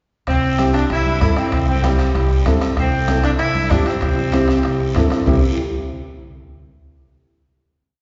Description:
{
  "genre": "latin, cumbia",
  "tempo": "192 BPM",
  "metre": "4/4",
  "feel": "straight",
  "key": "C major",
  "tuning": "A4 = 443 Hz",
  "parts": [
    { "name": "warm saxophone section", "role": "melody", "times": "0.3-4.9 s", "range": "G3 to E4", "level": "-23 LUFS", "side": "equal", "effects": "none" },
    { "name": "upright bass", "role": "bass", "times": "0.3-5.4 s", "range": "C2 to G2", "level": "-23 LUFS", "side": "equal", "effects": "none" },
    { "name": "bombo", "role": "percussion", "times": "0.3-5.3 s", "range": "none", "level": "-25 LUFS", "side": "equal", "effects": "none" },
    { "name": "congas", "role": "percussion", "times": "0.3-5.3 s", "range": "none", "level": "-31 LUFS", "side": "equal", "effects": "none" },
    { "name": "guiro", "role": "percussion", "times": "0.3-5.3 s", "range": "none", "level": "-39 LUFS", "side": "equal", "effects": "none" },
    { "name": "timbales", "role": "percussion", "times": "0.3-5.3 s", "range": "none", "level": "-32 LUFS", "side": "equal", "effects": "none" },
    { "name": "dark upright piano", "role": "accompaniment", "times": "0.6-5.4 s", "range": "C4 to A4", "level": "-24 LUFS", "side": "equal", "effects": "none" }
  ],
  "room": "wet concert hall reverb, RT60 2.0 s",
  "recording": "recorded in a church or concert hall, nothing above 7.6 kHz",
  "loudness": "-17 LUFS",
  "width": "mono",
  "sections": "0.3-5.3 A section; 5.3-6.5 final chord",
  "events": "none",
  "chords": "0.3 C",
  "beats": "| 0.28 0.59 0.90 1.21 | 1.52 1.84 2.15 2.46 | 2.77 3.08 3.40 3.71 | 4.02 4.33 4.65 4.96 | 5.27"
}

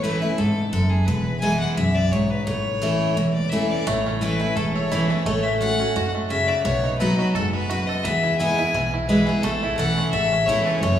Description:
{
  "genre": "bluegrass",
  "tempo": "172 BPM",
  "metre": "4/4",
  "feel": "swing 54% on 8ths",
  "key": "A major",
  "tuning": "A4 = 440 Hz",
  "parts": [
    { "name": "rich fiddle", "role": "melody", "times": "0.0-11.0 s", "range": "G#4 to G#5", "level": "-25 LUFS", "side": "left 3 dB", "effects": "none" },
    { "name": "picked steel-string acoustic guitar", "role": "accompaniment", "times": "0.0-11.0 s", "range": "E2 to F#4", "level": "-22 LUFS", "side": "equal", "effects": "none" },
    { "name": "upright bass", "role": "bass", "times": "0.0-11.0 s", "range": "E1 to F#2", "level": "-28 LUFS", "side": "equal", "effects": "none" },
    { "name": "bluegrass banjo", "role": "melody", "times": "3.9-11.0 s", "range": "A3 to A4", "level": "-28 LUFS", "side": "right 2 dB", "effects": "none" }
  ],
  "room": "wet recital hall reverb, RT60 1.8 s",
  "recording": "recorded in a church or concert hall, studio ambience",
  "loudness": "-19 LUFS",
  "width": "side -10 dB against mid",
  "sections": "0.0-11.0 A section",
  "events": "none",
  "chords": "0.0 A; 1.1 E; 2.5 A; 5.3 F#m/A; 6.7 B; 8.0 E; 9.4 A",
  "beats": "0.04 0.39 0.73 | 1.08 1.43 1.78 2.13 | 2.48 2.82 3.17 3.52 | 3.87 4.22 4.57 4.91 | 5.26 5.61 5.96 6.31 | 6.66 7.00 7.35 7.70 | 8.05 8.40 8.74 9.09 | 9.44 9.79 10.13 10.48 | 10.83"
}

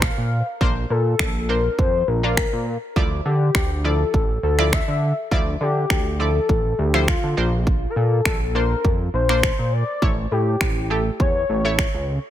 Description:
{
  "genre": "dance-pop",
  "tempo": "102 BPM",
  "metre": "4/4",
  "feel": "straight",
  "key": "D minor",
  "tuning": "A4 = 440 Hz",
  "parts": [
    { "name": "warm velvety synth lead", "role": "melody", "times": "0.0-12.0 s", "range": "F4 to F5", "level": "-24 LUFS", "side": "left 4 dB", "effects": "chorus, tape echo" },
    { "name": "analog pluck", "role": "accompaniment", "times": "0.0-12.1 s", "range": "F3 to D5", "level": "-26 LUFS", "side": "right 1 dB", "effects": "chorus, sidechain pumping" },
    { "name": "chorused synth bass", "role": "bass", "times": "0.0-12.2 s", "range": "A1 to D3", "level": "-22 LUFS", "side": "right 1 dB", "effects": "sidechain pumping" },
    { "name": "house drum kit", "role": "drums", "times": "0.0-11.9 s", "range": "finger snaps, kick drum", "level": "-22 LUFS", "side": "right 1 dB", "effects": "none" }
  ],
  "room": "little or no reverb",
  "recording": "none",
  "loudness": "-18 LUFS",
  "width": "side -12 dB against mid",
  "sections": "0.0-12.3 A section",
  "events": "none",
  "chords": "0.0 Bbadd9; 3.0 Dmadd9; 7.4 Bbadd9; 10.0 A",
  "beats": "0.02 | 0.61 1.20 1.79 2.37 | 2.96 3.55 4.14 4.73 | 5.32 5.90 6.49 7.08 | 7.67 8.26 8.84 9.43 | 10.02 10.61 11.20 11.79"
}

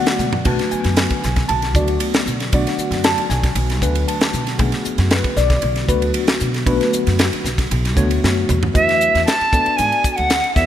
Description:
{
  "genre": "electric jazz fusion",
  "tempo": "116 BPM",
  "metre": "4/4",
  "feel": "straight",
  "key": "B dorian",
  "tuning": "A4 = 440 Hz",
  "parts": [
    { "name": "mellow tine electric piano", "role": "accompaniment", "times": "0.0-10.7 s", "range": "A3 to A5", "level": "-21 LUFS", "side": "left 2 dB", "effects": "medium stereo tremolo, phaser" },
    { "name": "airy breathy pad", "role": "sustained chords", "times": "0.0-8.7 s", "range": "D3 to F#4", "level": "-29 LUFS", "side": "equal", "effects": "chorus" },
    { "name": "tight funk drum kit", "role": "drums", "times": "0.1-10.7 s", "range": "crash cymbal, hi-hat, kick drum, ride cymbal, snare drum, toms", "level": "-20 LUFS", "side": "equal", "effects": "none" },
    { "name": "upright bass", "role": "bass", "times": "0.2-10.7 s", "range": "B1 to B2", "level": "-21 LUFS", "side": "equal", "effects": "none" },
    { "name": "bright reedy silver concert flute", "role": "melody", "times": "8.7-10.7 s", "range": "E5 to A5", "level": "-15 LUFS", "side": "right 1 dB", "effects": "none" }
  ],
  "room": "moderate lush hall reverb, RT60 1.8 s, studio ambience",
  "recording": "bright 1980s-style digital production",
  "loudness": "-15 LUFS",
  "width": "side -11 dB against mid",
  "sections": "0.0-8.7 A section; 8.7-10.7 B section",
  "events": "drum fill 0.2, 8.2-8.7",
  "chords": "0.0 Bm7; 8.7 E9sus4; 9.5 Bm7/D",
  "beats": "| 0.46 0.97 1.49 2.01 | 2.53 3.04 3.56 4.08 | 4.60 5.12 5.63 6.15 | 6.67 7.19 7.71 8.22 | 8.74 9.26 9.78 10.30"
}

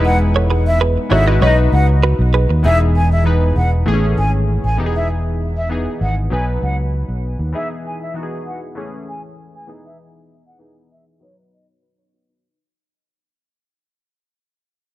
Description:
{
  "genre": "afrobeats",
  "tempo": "98 BPM",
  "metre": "4/4",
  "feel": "straight",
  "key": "E major",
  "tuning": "A4 = 438 Hz",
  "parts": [
    { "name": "warm analog keys", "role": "accompaniment", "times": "0.0-12.6 s", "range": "E3 to D#5", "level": "-22 LUFS", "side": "left 2 dB", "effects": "chorus" },
    { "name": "fingered electric bass", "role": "bass", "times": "0.0-7.5 s", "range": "E1 to D#2", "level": "-15 LUFS", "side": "equal", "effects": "none" },
    { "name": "breathy mellow silver concert flute", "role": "melody", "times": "0.1-11.7 s", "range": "C#5 to G#5", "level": "-22 LUFS", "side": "equal", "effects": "digital delay" },
    { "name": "direct-recorded clean electric guitar", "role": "riff", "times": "0.4-2.5 s", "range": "F#4 to D#5", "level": "-22 LUFS", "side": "right 6 dB", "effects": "digital delay" }
  ],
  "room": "light reverb",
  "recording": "dark, warm production, low-pass filter",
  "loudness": "-14 LUFS",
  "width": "side -16 dB against mid",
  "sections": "0.0-2.6 A section; 2.6-12.4 B section",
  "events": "fade-out 2.6-12.4",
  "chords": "0.0 Emaj7; 1.4 B; 2.6 Emaj7; 3.9 Amaj7; 4.8 Emaj7; 6.3 B; 7.5 Emaj7; 8.8 Amaj7; 9.7 Emaj7; 11.2 B",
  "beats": "| 0.19 0.80 1.42 2.03 | 2.64 3.25 3.86 4.48 | 5.09 5.70 6.31 6.92 | 7.54 8.15 8.76 9.37 | 9.99 10.60 11.21 11.82"
}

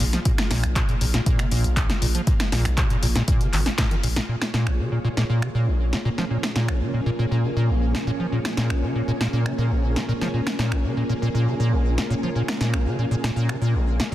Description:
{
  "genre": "acid house",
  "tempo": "119 BPM",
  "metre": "4/4",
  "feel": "straight",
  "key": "Bb minor",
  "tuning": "A4 = 441 Hz",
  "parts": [
    { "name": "string machine, full ensemble", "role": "sustained chords", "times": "0.0-14.1 s", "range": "Bb3 to F5", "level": "-31 LUFS", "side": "right 1 dB", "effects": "ensemble chorus, sidechain pumping" },
    { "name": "acid bass, square", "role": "riff", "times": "0.0-14.1 s", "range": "Bb1 to Db4", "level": "-23 LUFS", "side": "equal", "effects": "analog chorus, sidechain pumping, digital delay" },
    { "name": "saturated sub bass", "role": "bass", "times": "0.0-4.2 s", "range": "Ab1 to Bb1", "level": "-25 LUFS", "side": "equal", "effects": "sidechain pumping" },
    { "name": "punchy analog drum machine", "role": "drums", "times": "0.0-14.1 s", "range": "finger snaps, handclaps, hi-hat, snare drum", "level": "-28 LUFS", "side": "equal", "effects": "soft clipping on snare" },
    { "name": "electronic kick drum", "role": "drums", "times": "0.3-3.9 s", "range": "none", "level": "-22 LUFS", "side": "equal", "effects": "none" },
    { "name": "granular cloud pad", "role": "texture", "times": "5.7-14.1 s", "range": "Db4 to Ab5", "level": "-31 LUFS", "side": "equal", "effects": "built-in reverb, sidechain pumping" }
  ],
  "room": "light reverb",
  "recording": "dense, heavily limited modern master",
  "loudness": "-20 LUFS",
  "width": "side -14 dB against mid",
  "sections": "0.0-4.3 A section; 4.3-14.1 B section",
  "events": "drum fill 3.8-4.3",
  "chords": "0.0 Bb7(no3); 4.3 Bbm7",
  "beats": "| 0.25 0.76 1.26 1.77 | 2.27 2.77 3.28 3.78 | 4.29 4.79 5.30 5.80 | 6.30 6.81 7.31 7.82 | 8.32 8.82 9.33 9.83 | 10.34 10.84 11.35 11.85 | 12.36 12.86 13.36 13.87"
}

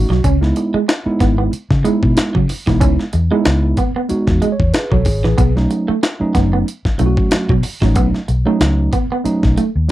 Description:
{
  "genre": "funk",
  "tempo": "93 BPM",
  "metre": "4/4",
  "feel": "swing 56% on 16ths",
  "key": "unclear",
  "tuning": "A4 = 441 Hz",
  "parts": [
    { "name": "mellow tine electric piano", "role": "stabs", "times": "0.0-9.9 s", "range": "F#3 to D#5", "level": "-18 LUFS", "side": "right 2 dB", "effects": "none" },
    { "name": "vintage muted fingered electric bass", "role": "bass", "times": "0.0-9.9 s", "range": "F#1 to C#3", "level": "-16 LUFS", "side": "left 1 dB", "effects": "none" },
    { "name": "electric guitar through a small old amp", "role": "riff", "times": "0.1-9.7 s", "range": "E3 to C#4", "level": "-20 LUFS", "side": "right 4 dB", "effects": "none" },
    { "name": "breakbeat sampler-style drum kit", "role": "drums", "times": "0.1-9.9 s", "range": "hi-hat, kick drum, snare drum", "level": "-17 LUFS", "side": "left 1 dB", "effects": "overdrive" }
  ],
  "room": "little or no reverb",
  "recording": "dry, close 1970s-style studio recording",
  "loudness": "-13 LUFS",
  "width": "side -15 dB against mid",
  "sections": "0.0-9.9 A section",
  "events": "tine electric piano fill 0.0, 4.1-5.4",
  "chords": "0.2 C#m7; 5.4 B9",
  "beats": "| 0.24 0.88 1.52 2.17 | 2.81 3.45 4.10 4.74 | 5.38 6.03 6.67 7.32 | 7.96 8.61 9.25 9.89"
}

